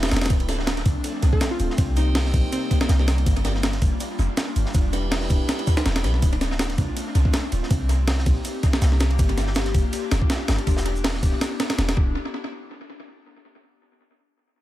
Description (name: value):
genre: drum and bass, jungle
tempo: 162 BPM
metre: 4/4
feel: swing 54% on 16ths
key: unclear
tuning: A4 = 439 Hz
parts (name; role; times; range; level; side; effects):
- airy breathy pad; sustained chords; 0.0-12.1 s; F3 to G4; -31 LUFS; left 2 dB; chorus
- tonewheel organ; stabs; 0.0-6.1 s; Bb3 to D5; -34 LUFS; equal; stopped rotary speaker, vintage 12-bit sampler grit, tape echo
- warm 808-style bass; bass; 0.0-12.1 s; D1 to C2; -22 LUFS; equal; none
- breakbeat sampler-style drum kit; drums; 0.0-12.0 s; kick drum, ride cymbal, snare drum; -23 LUFS; equal; tape echo
- crunchy breakbeat drum kit; drums; 0.0-11.7 s; hi-hat, shaker, snare drum; -35 LUFS; equal; high-pass filter on hats, high-pass filter on snare, high-pass filter on perc, high-pass filter on room, tape echo
- plucky unison lead; melody; 1.3-2.8 s; C4 to A4; -30 LUFS; left 2 dB; dub echo
room: small room ambience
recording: echo-heavy mix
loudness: -20 LUFS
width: side -14 dB against mid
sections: 0.3-12.2 A section; 12.2-13.6 B section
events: break 0.0-0.3; filter sweep on 808-style bass 0.3-12.2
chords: 0.3 Dm7; 1.8 Cm7; 3.3 Gm7; 4.7 Em7; 6.2 Dm7; 7.7 Cm7; 9.2 Gm7; 10.7 Em7; 12.0 Dm7; 12.2 N.C.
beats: | 0.30 0.67 1.04 1.41 | 1.78 2.15 2.52 2.89 | 3.26 3.63 4.00 4.38 | 4.75 5.12 5.49 5.86 | 6.23 6.60 6.97 7.34 | 7.71 8.08 8.45 8.82 | 9.19 9.56 9.93 10.30 | 10.67 11.04 11.41 11.78